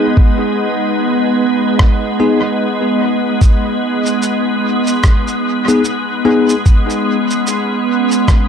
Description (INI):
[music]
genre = ambient dub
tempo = 74 BPM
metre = 4/4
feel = swing 59% on 16ths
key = G# minor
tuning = A4 = 440 Hz
[part]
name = soft additive organ-like pad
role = sustained chords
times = 0.0-8.5 s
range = G#3 to D#4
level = -14 LUFS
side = right 1 dB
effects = ensemble chorus, built-in reverb
[part]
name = bell-like tine electric piano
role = stabs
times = 0.0-6.5 s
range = B3 to G#4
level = -16 LUFS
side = left 3 dB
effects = dub echo
[part]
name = electronic kick drum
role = drums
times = 0.2-8.5 s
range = none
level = -10 LUFS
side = equal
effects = none
[part]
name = electronic rim click and shaker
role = drums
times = 1.8-8.5 s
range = none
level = -23 LUFS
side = right 1 dB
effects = dub echo
[sound]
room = light reverb, digital ambience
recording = echo-heavy mix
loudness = -12 LUFS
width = side -7 dB against mid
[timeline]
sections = 0.0-8.5 A section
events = none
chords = 0.0 G#m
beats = | 0.17 0.98 1.79 2.60 | 3.42 4.23 5.04 5.85 | 6.66 7.47 8.28